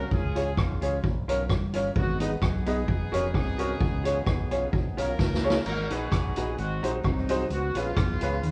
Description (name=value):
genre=ska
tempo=130 BPM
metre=4/4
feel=swing 54% on 8ths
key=G# dorian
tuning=A4 = 441 Hz
part: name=warm horn section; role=melody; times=0.0-8.5 s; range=F#3 to A#4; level=-37 LUFS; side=equal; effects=none
part: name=vintage hollow-body jazz guitar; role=accompaniment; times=0.0-8.4 s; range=B3 to C#5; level=-37 LUFS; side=equal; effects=none
part: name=fingered electric bass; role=bass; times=0.0-8.5 s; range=E#1 to D#2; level=-34 LUFS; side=equal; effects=none
part: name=street-band drum kit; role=drums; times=0.1-8.5 s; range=crash cymbal, hi-hat, kick drum, rim click, snare drum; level=-30 LUFS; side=equal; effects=vintage 12-bit sampler grit
part: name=clear upright piano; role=stabs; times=0.4-8.3 s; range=C#4 to D#5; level=-34 LUFS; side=equal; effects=none
room=moderate stone room reverb, RT60 1.0 s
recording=band playing live in one room, cassette tape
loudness=-27 LUFS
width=mono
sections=0.0-5.7 A section; 5.7-8.5 B section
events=drum fill 5.2-5.7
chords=0.1 C#; 1.0 A#m; 2.0 G#m; 2.9 F#; 3.8 C#; 4.7 A#m; 5.2 C#; 5.7 G#m7; 6.6 G#7; 7.5 C#7